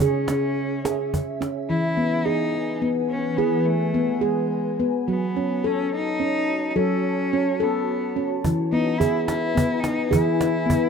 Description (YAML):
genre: world meditative, meditative tuned percussion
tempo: 71 BPM (dotted quarters)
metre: 6/8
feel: straight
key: unclear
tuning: A4 = 440 Hz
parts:
  - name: rich cello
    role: melody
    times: 0.0-10.9 s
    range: G#3 to E4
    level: -27 LUFS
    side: left 2 dB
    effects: plate reverb
  - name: glassy FM pad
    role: sustained chords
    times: 0.0-10.9 s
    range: E3 to A5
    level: -29 LUFS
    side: left 2 dB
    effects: ensemble chorus, built-in reverb, phaser, plate reverb
  - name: handpan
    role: arpeggios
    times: 0.0-10.9 s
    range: C#3 to A4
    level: -22 LUFS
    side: equal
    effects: plate reverb
  - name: cajon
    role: percussion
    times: 0.1-1.6, 8.4-10.8 s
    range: none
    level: -25 LUFS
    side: right 2 dB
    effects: none
room: moderate studio reverb, RT60 0.6 s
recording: rough home demo mix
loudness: -20 LUFS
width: side -6 dB against mid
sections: 0.0-1.7 A section; 1.7-10.9 B section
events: none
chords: 0.0 C#m; 1.7 E; 5.1 F#m; 8.4 E